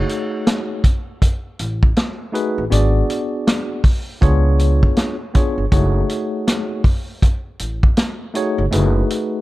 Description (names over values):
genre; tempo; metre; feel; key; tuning
hip hop, jazz-hop; 80 BPM; 4/4; swing 61% on 16ths; unclear; A4 = 441 Hz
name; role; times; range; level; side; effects
tine electric piano; accompaniment; 0.0-9.4 s; G#3 to D5; -21 LUFS; left 1 dB; medium stereo tremolo
vintage drum kit; drums; 0.1-9.3 s; hi-hat, kick drum, snare drum; -16 LUFS; equal; none
upright bass; bass; 1.6-9.0 s; F#1 to C#2; -17 LUFS; equal; none
room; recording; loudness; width
little or no reverb; dark, warm production; -15 LUFS; side -18 dB against mid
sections
0.0-9.4 A section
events
none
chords
0.0 F#m69; 2.7 G#m7b5; 4.2 C#7b9; 5.7 F#m69